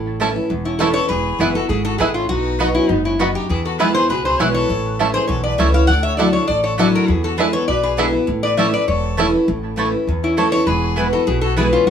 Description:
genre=bluegrass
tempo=201 BPM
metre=4/4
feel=straight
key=A major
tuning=A4 = 440 Hz
part: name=picked steel-string acoustic guitar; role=accompaniment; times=0.0-11.9 s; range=E2 to F#4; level=-20 LUFS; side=left 1 dB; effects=none
part: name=upright bass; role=bass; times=0.0-11.9 s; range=E1 to E2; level=-22 LUFS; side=equal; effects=none
part: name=bluegrass banjo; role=arpeggios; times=0.2-9.3 s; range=A3 to F#4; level=-22 LUFS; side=right 4 dB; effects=none
part: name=mandolin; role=stabs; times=0.2-11.7 s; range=A3 to B5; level=-25 LUFS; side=right 4 dB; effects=tape echo
part: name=bright fiddle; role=second line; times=0.6-11.9 s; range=B3 to D5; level=-28 LUFS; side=left 6 dB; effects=none
part: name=lap resonator guitar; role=melody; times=0.7-11.9 s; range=D#4 to F#5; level=-20 LUFS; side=left 1 dB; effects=none
room=moderate studio reverb, RT60 0.7 s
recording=none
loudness=-15 LUFS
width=side -8 dB against mid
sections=0.0-9.5 A section; 9.5-11.9 A section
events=none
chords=0.0 A; 1.1 E; 2.3 B; 3.5 E; 4.7 A; 5.9 Dadd9; 7.1 E7; 8.3 A; 10.7 E

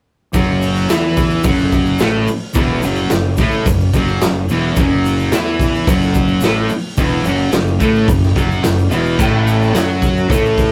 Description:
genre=garage rock duo or trio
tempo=108 BPM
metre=4/4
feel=straight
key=F# minor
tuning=A4 = 440 Hz
part: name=fuzz guitar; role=riff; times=0.3-10.7 s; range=E2 to F#4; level=-18 LUFS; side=equal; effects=distortion
part: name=fuzz fingered electric bass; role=bass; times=0.3-10.7 s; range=E1 to F#2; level=-22 LUFS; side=equal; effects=overdrive
part: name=raw garage drum kit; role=drums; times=0.3-10.7 s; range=crash cymbal, hi-hat, kick drum, snare drum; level=-20 LUFS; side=equal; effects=none
part: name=egg shaker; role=percussion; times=0.3-10.7 s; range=none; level=-37 LUFS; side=equal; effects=none
room=moderate small room ambience, RT60 0.5 s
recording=rough rehearsal-room recording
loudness=-15 LUFS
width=mono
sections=0.3-10.7 A section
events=none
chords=0.3 F#m

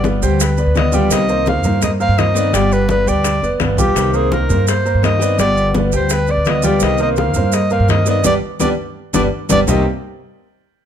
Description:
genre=latin, Cuban son and guajira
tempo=168 BPM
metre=4/4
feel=straight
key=C minor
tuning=A4 = 441 Hz
part: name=clear clarinet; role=melody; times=0.0-9.8 s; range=G4 to F5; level=-19 LUFS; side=left 1 dB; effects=none
part: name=flamenco guitar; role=accompaniment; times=0.0-9.8 s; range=C3 to G4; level=-22 LUFS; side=left 3 dB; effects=none
part: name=clear concert grand piano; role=arpeggios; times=0.0-9.8 s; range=C3 to G5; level=-20 LUFS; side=right 2 dB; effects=none
part: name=upright bass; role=bass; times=0.0-9.8 s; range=F1 to G2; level=-18 LUFS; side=equal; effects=none
part: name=congas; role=percussion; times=0.0-9.8 s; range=none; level=-23 LUFS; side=left 2 dB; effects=none
part: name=maracas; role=percussion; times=0.0-9.8 s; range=none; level=-26 LUFS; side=right 8 dB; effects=none
part: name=bongos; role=percussion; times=0.1-9.8 s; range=none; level=-26 LUFS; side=left 10 dB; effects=none
room=light reverb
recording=close, detailed microphones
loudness=-13 LUFS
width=side -9 dB against mid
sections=0.0-9.7 A section; 9.7-10.9 B section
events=drum fill 8.2-9.7; band accent 8.2-9.7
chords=0.0 G7; 1.1 Cm7; 2.5 G7; 4.0 Cm7; 5.4 G7; 6.8 Cm7; 8.2 G; 9.7 Cm7

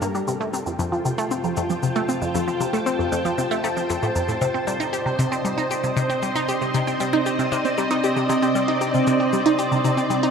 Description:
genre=ambient, sequencer-driven space music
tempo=116 BPM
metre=4/4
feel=straight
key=unclear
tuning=A4 = 440 Hz
part: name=string machine, full ensemble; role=sustained chords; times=0.0-10.3 s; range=G3 to A5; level=-23 LUFS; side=equal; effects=ensemble chorus
part: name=resonant blip pluck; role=riff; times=0.0-10.3 s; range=F2 to G4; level=-23 LUFS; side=equal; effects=phaser, ping-pong delay
part: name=shaker and woodblock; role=percussion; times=0.0-10.3 s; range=none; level=-37 LUFS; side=right 2 dB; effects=ping-pong delay
room=wet cathedral reverb, RT60 5.3 s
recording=in a vast, echoing space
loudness=-20 LUFS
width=side -6 dB against mid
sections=0.0-10.3 A section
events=fade-in on string machine 0.0-10.3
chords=0.3 Fadd9; 4.4 Cmadd9

